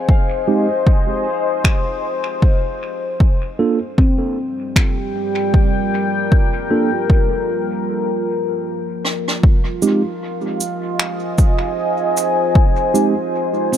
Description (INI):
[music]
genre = ambient dub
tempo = 77 BPM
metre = 4/4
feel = swing 60% on 16ths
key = F minor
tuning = A4 = 441 Hz
[part]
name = deep dark ambient pad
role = sustained chords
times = 0.0-13.8 s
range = G3 to Ab5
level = -20 LUFS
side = left 1 dB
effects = chorus, built-in reverb
[part]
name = handpan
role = arpeggios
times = 0.0-6.9, 13.7-13.8 s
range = C4 to F5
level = -27 LUFS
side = left 2 dB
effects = low-pass filter, dub echo
[part]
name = electronic kick drum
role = drums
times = 0.1-12.7 s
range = none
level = -14 LUFS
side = equal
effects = overdrive
[part]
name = mellow tine electric piano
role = stabs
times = 0.5-13.1 s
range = Ab3 to A4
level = -21 LUFS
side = right 3 dB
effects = slow stereo tremolo, dub echo
[part]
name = finger snaps, rim click and cabasa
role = drums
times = 1.6-13.8 s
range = none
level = -22 LUFS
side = right 1 dB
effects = dub echo
[sound]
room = studio reverb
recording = dark, warm production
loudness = -15 LUFS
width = side -10 dB against mid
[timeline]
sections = 0.0-9.4 A section; 9.4-13.8 B section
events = filter sweep on handpan 0.0-9.4; break 7.9-9.4; drum fill 9.0-9.4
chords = 0.0 Fm7; 3.2 Gm7; 9.4 Fm7